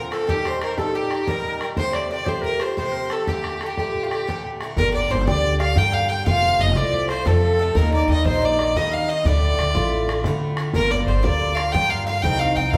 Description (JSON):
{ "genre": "celtic folk, Celtic slip jig", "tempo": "120 BPM (dotted quarters)", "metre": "9/8", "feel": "straight", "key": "G minor", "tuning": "A4 = 440 Hz", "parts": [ { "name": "clear fiddle", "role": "melody", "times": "0.0-12.8 s", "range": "F4 to G5", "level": "-26 LUFS", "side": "equal", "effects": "none" }, { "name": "breathy bright silver concert flute", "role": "second line", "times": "0.0-12.8 s", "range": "G4 to G5", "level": "-33 LUFS", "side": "equal", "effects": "none" }, { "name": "mandolin", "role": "second line", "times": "0.0-12.8 s", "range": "G4 to G5", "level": "-35 LUFS", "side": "equal", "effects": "none" }, { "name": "Irish bouzouki", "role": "accompaniment", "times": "0.0-12.8 s", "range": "G2 to G4", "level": "-28 LUFS", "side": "equal", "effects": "none" }, { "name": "bodhran", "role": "percussion", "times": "0.1-12.8 s", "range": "none", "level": "-30 LUFS", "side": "equal", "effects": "none" }, { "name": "upright bass", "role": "bass", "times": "4.8-12.8 s", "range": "F1 to Eb3", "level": "-24 LUFS", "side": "equal", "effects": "none" } ], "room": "wet large studio reverb, RT60 1.3 s", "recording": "band playing live in one room", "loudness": "-21 LUFS", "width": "mono", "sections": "0.0-4.8 A section; 4.8-12.8 B section", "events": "none", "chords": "0.3 Eb; 1.8 Fadd9; 3.3 Gmadd9; 4.8 Gm; 6.3 F; 7.8 Eb; 9.2 Dm; 10.7 Gm7; 12.2 Cm" }